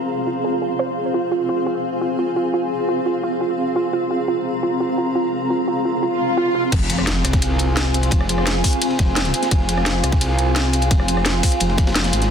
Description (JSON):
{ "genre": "dark technical drum and bass", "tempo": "172 BPM", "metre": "4/4", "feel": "straight", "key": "F minor", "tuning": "A4 = 440 Hz", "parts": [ { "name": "dark analog pad", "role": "sustained chords", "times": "0.0-12.3 s", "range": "F4 to Bb5", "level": "-26 LUFS", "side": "right 2 dB", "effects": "chorus, sidechain pumping" }, { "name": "granular cloud pad", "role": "texture", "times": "0.0-12.3 s", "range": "C4 to C6", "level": "-24 LUFS", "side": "left 1 dB", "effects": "built-in reverb, sidechain pumping" }, { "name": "soft round pluck", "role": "arpeggios", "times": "0.3-6.6 s", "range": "F4 to C5", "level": "-23 LUFS", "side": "right 3 dB", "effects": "chorus, sidechain pumping, tape echo" }, { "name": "swell and impact", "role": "sound effects", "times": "6.1-8.1 s", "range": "none", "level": "-25 LUFS", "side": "left 1 dB", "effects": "none" }, { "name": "metallic wobble bass", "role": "bass", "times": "6.7-12.3 s", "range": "F1 to C2", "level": "-20 LUFS", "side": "equal", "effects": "chorus, overdrive, sidechain pumping" }, { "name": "crunchy breakbeat drum kit", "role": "drums", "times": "6.7-12.3 s", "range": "ride cymbal, snare drum", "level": "-30 LUFS", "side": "left 1 dB", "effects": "high-pass filter on cymbals, high-pass filter on snare, high-pass filter on room" }, { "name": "drum and bass drum kit", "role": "drums", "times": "6.7-12.3 s", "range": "crash cymbal, hi-hat, rim click, snare drum", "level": "-22 LUFS", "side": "left 1 dB", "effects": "none" }, { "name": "electronic kick drum", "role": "drums", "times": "6.7-11.9 s", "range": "none", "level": "-18 LUFS", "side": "equal", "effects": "none" } ], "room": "moderate digital room reverb, RT60 0.9 s, digital ambience", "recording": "dense, heavily limited modern master", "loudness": "-17 LUFS", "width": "side -7 dB against mid", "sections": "0.0-6.7 A section; 6.7-12.3 B section", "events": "filter sweep on analog synth pad 0.0-6.7; swell 6.1-6.7; drop 6.7-12.3; impact 6.7-8.1", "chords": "0.0 Fm" }